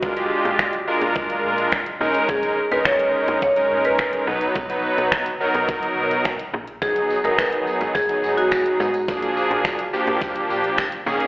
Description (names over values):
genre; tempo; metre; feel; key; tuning
dance-pop; 106 BPM; 4/4; straight; unclear; A4 = 440 Hz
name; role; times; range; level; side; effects
big bright polysynth; accompaniment; 0.0-11.3 s; D#3 to B4; -21 LUFS; equal; sidechain pumping
slap-like FM bass; bass; 0.0-11.3 s; G#1 to B2; -31 LUFS; equal; sidechain pumping
pop drum kit; drums; 0.0-11.3 s; finger snaps, hi-hat, kick drum; -23 LUFS; equal; overdrive
marimba with medium hard mallets; melody; 2.3-8.9 s; F#4 to C#5; -22 LUFS; equal; digital delay
tambourine; percussion; 6.8-11.2 s; none; -44 LUFS; left 2 dB; none
room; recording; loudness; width
moderate plate reverb, RT60 1.5 s; played on a big sound system in a bare room, large studio reverb, telephone sound; -18 LUFS; side -21 dB against mid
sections
0.0-11.3 A section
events
none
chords
0.0 A#7; 2.0 D#7sus4/A#; 4.3 B; 6.8 G#m7; 9.1 A#7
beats
| 0.03 0.59 1.16 1.72 | 2.29 2.86 3.42 3.99 | 4.55 5.12 5.69 6.25 | 6.82 7.38 7.95 8.52 | 9.08 9.65 10.21 10.78